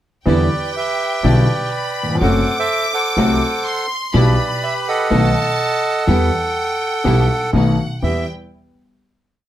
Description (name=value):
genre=tango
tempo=124 BPM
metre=4/4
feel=rubato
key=E minor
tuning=A4 = 442 Hz
part: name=bandoneon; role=melody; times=0.3-8.3 s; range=G4 to G5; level=-20 LUFS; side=right 2 dB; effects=none
part: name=clear symphonic violin section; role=second line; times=0.3-8.3 s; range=F#5 to D6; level=-24 LUFS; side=left 1 dB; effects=none
part: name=warm concert grand piano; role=accompaniment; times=0.3-8.2 s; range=B1 to G4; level=-18 LUFS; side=left 1 dB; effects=none
part: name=dark symphonic string section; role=stabs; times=0.3-8.2 s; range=G3 to F#4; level=-26 LUFS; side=left 1 dB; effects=none
part: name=upright bass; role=bass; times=0.3-8.2 s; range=F#1 to E2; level=-19 LUFS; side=equal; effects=none
room=moderate club reverb, RT60 0.5 s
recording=none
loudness=-15 LUFS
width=side -12 dB against mid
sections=0.3-8.0 A section; 8.0-9.5 final chord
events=none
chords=0.3 Em7; 2.2 F#dim; 4.1 Em/B; 5.1 B7; 6.1 Em; 7.5 B7; 8.0 Em